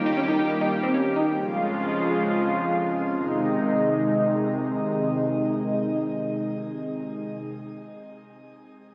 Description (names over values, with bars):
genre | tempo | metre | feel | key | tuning
pop | free time | none | none | Ab major | A4 = 439 Hz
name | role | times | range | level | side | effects
lush unison pad | sustained chords | 0.0-7.4 s | F2 to G4 | -26 LUFS | equal | chorus, low-pass filter, shimmer reverb
unison pluck | arpeggios | 0.1-1.3 s | C4 to Eb4 | -30 LUFS | equal | low-pass filter, tape echo, shimmer reverb
room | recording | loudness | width
wet lush hall reverb, RT60 2.2 s | recorded on a phone in the room, club reverb, compression | -25 LUFS | mono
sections
0.0-3.1 A section; 3.1-6.7 B section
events
none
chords
0.0 Eb; 1.4 Db/F; 3.1 Ab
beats
free time